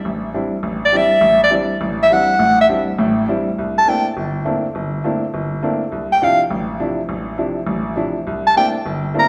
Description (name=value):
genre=jazz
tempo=205 BPM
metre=4/4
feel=swing 63% on 8ths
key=D mixolydian, C mixolydian from 3.6 s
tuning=A4 = 440 Hz
part: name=clear grand piano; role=accompaniment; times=0.1-9.3 s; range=G1 to E4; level=-22 LUFS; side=equal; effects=none
part: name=breathy soprano saxophone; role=melody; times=0.9-4.1, 6.1-6.4, 8.5-9.3 s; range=D5 to Bb5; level=-17 LUFS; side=equal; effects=none
room=wet recital hall reverb, RT60 1.6 s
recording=recorded in a church or concert hall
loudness=-17 LUFS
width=mono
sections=0.0-3.6 A section; 3.6-9.3 A section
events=soprano saxophone solo 0.0-9.3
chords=0.0 D9sus4; 3.6 C13; 5.9 Dmadd9; 8.3 C13